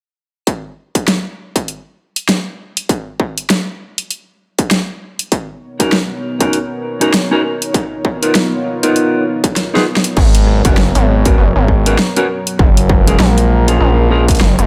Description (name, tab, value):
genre	glitch hop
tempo	99 BPM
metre	4/4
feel	swing 59% on 16ths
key	G# dorian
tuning	A4 = 443 Hz
part	dubstep drum kit	drums	0.5-14.7 s	crash cymbal, hi-hat, rim click, snare drum	-18 LUFS	equal	studio reverb
part	electronic kick drum	drums	0.5-14.4 s	none	-16 LUFS	equal	distortion, high-pass filter on kick, studio reverb
part	warm analog pad	sustained chords	5.3-14.7 s	F#3 to C#5	-22 LUFS	equal	chorus, sidechain pumping
part	mellow electric guitar	stabs	5.8-14.2 s	B3 to A#4	-20 LUFS	equal	sidechain pumping, dub echo
part	gritty driven synth bass	bass	10.2-14.7 s	F#1 to A#1	-14 LUFS	equal	none
room	light reverb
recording	none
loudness	-14 LUFS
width	mono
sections	0.5-10.2 A section; 10.2-14.7 B section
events	drum fill 9.6-10.2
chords	0.5 N.C.; 5.3 Bmaj9; 7.7 C#13; 10.2 G#m11; 12.6 F#maj9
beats	| 0.47 1.08 1.68 2.29 | 2.90 3.50 4.11 4.71 | 5.32 5.93 6.53 7.14 | 7.74 8.35 8.96 9.56 | 10.17 10.78 11.38 11.99 | 12.59 13.20 13.80 14.41